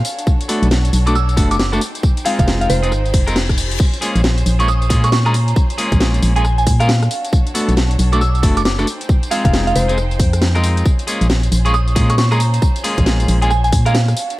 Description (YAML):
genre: UK garage, two-step garage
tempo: 136 BPM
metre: 4/4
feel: swing 62% on 16ths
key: unclear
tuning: A4 = 440 Hz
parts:
  - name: soft synth bell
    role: melody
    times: 0.0-14.2 s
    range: C5 to E6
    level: -21 LUFS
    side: right 2 dB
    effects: chorus, tape echo
  - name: rich studio violin section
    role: sustained chords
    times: 0.0-14.4 s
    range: Db4 to G5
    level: -30 LUFS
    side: equal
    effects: sidechain pumping
  - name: organ-like FM bass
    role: bass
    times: 0.0-14.1 s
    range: F1 to Bb2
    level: -15 LUFS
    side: equal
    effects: none
  - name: garage drum kit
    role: drums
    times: 0.0-14.4 s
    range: crash cymbal, hi-hat, rim click, snare drum, tambourine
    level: -22 LUFS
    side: equal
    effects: studio reverb
  - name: electronic kick drum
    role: drums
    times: 0.3-13.8 s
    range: none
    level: -15 LUFS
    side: equal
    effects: studio reverb
  - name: clean electric guitar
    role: stabs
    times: 0.5-13.9 s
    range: Ab3 to Bb4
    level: -22 LUFS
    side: left 1 dB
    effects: tape echo
  - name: reverse cymbal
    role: sound effects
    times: 3.1-3.8 s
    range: none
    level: -27 LUFS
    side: left 6 dB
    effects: none
room: digital ambience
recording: vinyl crackle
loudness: -13 LUFS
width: side -18 dB against mid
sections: 0.0-14.4 A section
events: reverse cymbal 3.1-3.8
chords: 0.0 Bm7; 1.8 Fm7; 3.8 Bbm7; 7.1 Bm7; 8.9 Fm7; 10.9 Bbm7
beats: | 0.27 0.71 1.15 1.59 | 2.03 2.48 2.92 3.36 | 3.80 4.24 4.68 5.12 | 5.56 6.00 6.45 6.89 | 7.33 7.77 8.21 8.65 | 9.09 9.53 9.97 10.42 | 10.86 11.30 11.74 12.18 | 12.62 13.06 13.50 13.95 | 14.39